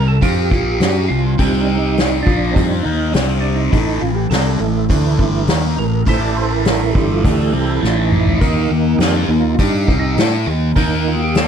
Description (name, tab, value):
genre	psychedelic rock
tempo	102 BPM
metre	4/4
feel	straight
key	unclear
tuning	A4 = 443 Hz
part	percussive tonewheel organ	sustained chords	0.0-11.5 s	Eb3 to D5	-21 LUFS	right 7 dB	slow rotary speaker, chorus vibrato
part	thick fuzz guitar	riff	0.0-11.5 s	G2 to A4	-18 LUFS	left 2 dB	distortion, phaser
part	fingered electric bass	bass	0.0-11.5 s	G1 to A2	-19 LUFS	equal	none
part	soft-mallet drum kit	drums	0.2-11.5 s	hi-hat, kick drum, snare drum, toms	-18 LUFS	equal	none
room	studio ambience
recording	none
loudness	-13 LUFS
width	side -8 dB against mid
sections	0.0-11.5 A section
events	tonewheel organ solo 0.0-11.5; drum fill 7.8-8.4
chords	0.0 Cm; 3.7 A5; 8.4 Eb5